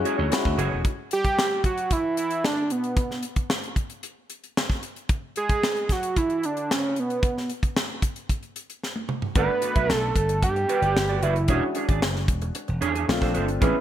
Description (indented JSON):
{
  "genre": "polished 1980s jazz-funk pop",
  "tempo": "113 BPM",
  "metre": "4/4",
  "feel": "straight",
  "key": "unclear",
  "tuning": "A4 = 440 Hz",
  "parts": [
    { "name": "warm grand piano", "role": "accompaniment", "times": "0.0-0.9, 9.4-13.8 s", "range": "G#3 to F#5", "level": "-30 LUFS", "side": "left 4 dB", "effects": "wide subtle chorus" },
    { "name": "electric guitar at the edge of break-up", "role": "riff", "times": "0.0-0.8, 9.4-13.8 s", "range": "C#4 to E5", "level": "-28 LUFS", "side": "right 7 dB", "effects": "analog chorus" },
    { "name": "slap bass", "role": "bass", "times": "0.0-0.8, 9.4-13.7 s", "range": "E1 to G2", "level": "-26 LUFS", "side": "equal", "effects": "none" },
    { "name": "crisp fusion drum kit", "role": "drums", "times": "0.1-13.7 s", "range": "hi-hat, kick drum, snare drum, toms", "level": "-26 LUFS", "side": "equal", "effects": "gated reverb" },
    { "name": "fat analog lead", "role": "melody", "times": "1.1-11.8 s", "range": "B3 to B4", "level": "-25 LUFS", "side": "right 2 dB", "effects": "none" }
  ],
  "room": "light reverb, small room reverb",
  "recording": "none",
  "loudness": "-22 LUFS",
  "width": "side -11 dB against mid",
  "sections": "0.8-13.8 A section",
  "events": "drum fill 8.8-9.4",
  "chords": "0.0 Dmaj9#11; 0.8 N.C.; 9.4 Gmaj7; 11.5 E13; 13.1 Bbmaj9"
}